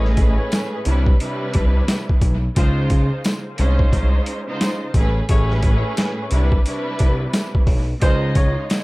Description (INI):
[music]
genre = hip hop, boom-bap hip-hop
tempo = 88 BPM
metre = 4/4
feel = swing 61% on 16ths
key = unclear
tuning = A4 = 438 Hz
[part]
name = warm upright piano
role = melody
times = 0.0-0.7, 8.0-8.8 s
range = C5 to Eb5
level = -29 LUFS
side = right 1 dB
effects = high-pass filter, low-pass filter, dub echo
[part]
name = rich studio string section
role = accompaniment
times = 0.0-8.8 s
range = A2 to Eb5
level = -24 LUFS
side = right 1 dB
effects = cassette tape, high-pass filter, low-pass filter
[part]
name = mellow horn section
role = stabs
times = 0.0-8.2 s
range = E4 to C#5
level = -34 LUFS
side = left 4 dB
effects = high-pass filter, low-pass filter, dub echo
[part]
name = smooth synth bass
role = bass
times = 0.0-8.6 s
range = A1 to Db2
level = -19 LUFS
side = equal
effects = none
[part]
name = boom bap sampler-style drum kit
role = drums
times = 0.0-8.8 s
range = hi-hat, kick drum, snare drum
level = -18 LUFS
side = equal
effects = overdrive
[part]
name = tambourine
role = percussion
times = 0.5-8.8 s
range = none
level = -40 LUFS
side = left 4 dB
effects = dub echo
[sound]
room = studio reverb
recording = echo-heavy mix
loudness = -16 LUFS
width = side -22 dB against mid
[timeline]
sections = 0.0-8.8 A section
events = none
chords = 0.0 Amaj9; 0.9 Cmaj9; 2.6 Dbmaj9; 5.0 Amaj9; 6.3 Cmaj9; 8.0 Dbmaj9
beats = 0.52 1.20 1.88 | 2.56 3.25 3.93 4.61 | 5.29 5.97 6.66 7.34 | 8.02 8.70